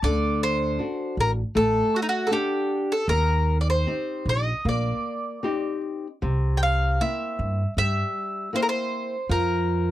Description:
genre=fado-style ballad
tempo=78 BPM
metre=4/4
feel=rubato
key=unclear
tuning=A4 = 440 Hz
part: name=mandolin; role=melody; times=0.0-9.9 s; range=Eb4 to G5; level=-25 LUFS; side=equal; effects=none
part: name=flamenco guitar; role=accompaniment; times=0.0-9.9 s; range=C3 to F#5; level=-28 LUFS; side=left 2 dB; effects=none
part: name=upright bass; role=bass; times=0.0-9.9 s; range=A1 to G2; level=-24 LUFS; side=equal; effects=none
room=little or no reverb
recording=dry, close 1970s-style studio recording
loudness=-22 LUFS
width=side -13 dB against mid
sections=0.0-9.9 A section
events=none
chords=0.0 D; 3.1 Eb6; 6.2 C7; 9.3 Fsus4

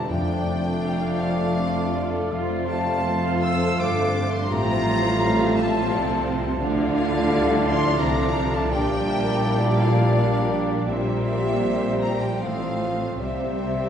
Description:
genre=classical, slow romantic movement for symphony orchestra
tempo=72-87 BPM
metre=3/4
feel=rubato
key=unclear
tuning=A4 = 441 Hz
part: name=rich chamber violin section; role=melody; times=0.0-13.9 s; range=E5 to E6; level=-33 LUFS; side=left 3 dB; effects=none
part: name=mellow concert flute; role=second line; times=0.0-13.9 s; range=E5 to E6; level=-31 LUFS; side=equal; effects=none
part: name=warm clarinet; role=second line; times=0.0-13.9 s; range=C4 to F4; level=-32 LUFS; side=left 1 dB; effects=none
part: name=warm symphonic violin section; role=second line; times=0.0-13.9 s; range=D4 to F5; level=-32 LUFS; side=left 3 dB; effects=none
part: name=warm bassoon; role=accompaniment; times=0.0-13.9 s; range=F3 to A3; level=-32 LUFS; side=right 2 dB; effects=none
part: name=warm symphonic viola section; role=accompaniment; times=0.0-13.9 s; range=F3 to F4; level=-31 LUFS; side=right 1 dB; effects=none
part: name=dark trombone section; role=sustained chords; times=0.0-13.9 s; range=F2 to A3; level=-31 LUFS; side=right 2 dB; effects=none
part: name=mellow French horn section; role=sustained chords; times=0.0-13.9 s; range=Bb3 to G4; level=-31 LUFS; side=left 1 dB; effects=none
part: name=concert harp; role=arpeggios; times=0.0-13.9 s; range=A2 to D6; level=-32 LUFS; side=left 4 dB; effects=none
part: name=mellow trumpet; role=stabs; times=0.0-13.9 s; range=C5 to F5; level=-32 LUFS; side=right 3 dB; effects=none
part: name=warm chamber cello section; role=bass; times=0.0-13.9 s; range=F2 to D3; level=-28 LUFS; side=right 2 dB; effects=none
part: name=warm chamber double bass section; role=bass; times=0.0-13.9 s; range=F1 to D2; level=-27 LUFS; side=equal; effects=none
part: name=timpani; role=percussion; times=0.1-1.2, 13.2-13.9 s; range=F2 to C3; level=-33 LUFS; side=left 1 dB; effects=none
room=wet scoring stage reverb, RT60 1.9 s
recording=heard from further back in the room, nothing above 10.3 kHz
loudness=-20 LUFS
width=side -8 dB against mid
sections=0.0-13.9 A section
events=timpani fill 13.2-13.9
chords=0.1 Dm/F; 2.3 F; 4.5 F/A; 6.6 Dm; 8.7 Gm/Bb; 10.9 C7/Bb; 12.4 F/A; 13.2 C

